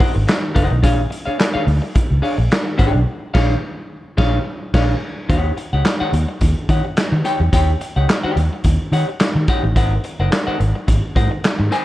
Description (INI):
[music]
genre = funk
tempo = 108 BPM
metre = 4/4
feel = swing 56% on 16ths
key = unclear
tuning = A4 = 440 Hz
[part]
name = semi-hollow electric guitar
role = accompaniment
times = 0.0-11.8 s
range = D4 to Ab5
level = -23 LUFS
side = left 2 dB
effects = spring reverb
[part]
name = raw garage drum kit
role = drums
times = 0.0-11.8 s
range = crash cymbal, handclaps, hi-hat, kick drum, snare drum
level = -18 LUFS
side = equal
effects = vintage 12-bit sampler grit
[part]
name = vintage muted fingered electric bass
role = bass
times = 0.2-11.7 s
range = Gb1 to Eb3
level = -17 LUFS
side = equal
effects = none
[sound]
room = little or no reverb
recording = dark, warm production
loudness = -15 LUFS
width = side -16 dB against mid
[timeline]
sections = 0.0-5.3 A section; 5.3-11.8 B section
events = band accent 3.1-5.3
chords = 0.0 Ab9 (rootless); 0.8 Bb7#9; 5.3 Eb7#9; 9.8 Ab9